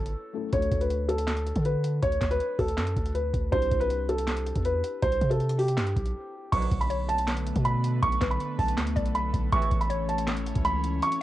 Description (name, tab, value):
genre	hip hop, trap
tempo	160 BPM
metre	4/4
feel	half-time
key	B minor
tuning	A4 = 440 Hz
part	dark baby grand piano	melody	0.0-11.2 s	G4 to C#6	-29 LUFS	right 1 dB	low-pass filter, cassette tape
part	felt-muted upright piano	accompaniment	0.0-6.5 s	A3 to A4	-39 LUFS	left 10 dB	low-pass filter, cassette tape
part	long sustained 808-style bass	bass	0.0-11.0 s	G1 to D3	-28 LUFS	equal	none
part	booming analog drum machine	drums	0.1-11.2 s	crash cymbal, handclaps, hi-hat, kick drum, snare drum	-30 LUFS	equal	vintage 12-bit sampler grit, cassette tape
part	airy breathy pad	sustained chords	6.8-11.2 s	D3 to C#4	-34 LUFS	left 1 dB	chorus, cassette tape
part	clear brass ensemble	stabs	6.5-6.9, 9.5-9.9 s	C#2 to F#3	-36 LUFS	right 9 dB	cassette tape
part	mallet-like synth pluck	second line	6.9-10.6 s	B4 to D5	-36 LUFS	left 8 dB	chorus, phaser, cassette tape, analog delay
room	little or no reverb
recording	home recording on cassette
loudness	-24 LUFS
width	side -14 dB against mid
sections	0.0-6.5 A section; 6.5-11.2 B section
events	break 0.1-0.5, 6.2-6.5; kick muted 11.0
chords	0.0 A; 0.5 D; 3.5 Cadd9; 6.5 Bm7; 9.5 A